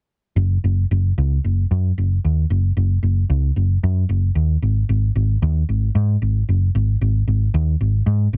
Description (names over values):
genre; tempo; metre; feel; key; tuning
rock; 113 BPM; 4/4; straight; unclear; A4 = 439 Hz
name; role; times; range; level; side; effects
hollow-body short-scale picked electric bass; bass; 0.4-8.4 s; F#1 to G#2; -19 LUFS; equal; none
room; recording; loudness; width
little or no reverb; dense, heavily limited modern master; -19 LUFS; mono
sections
0.4-8.4 A section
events
none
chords
none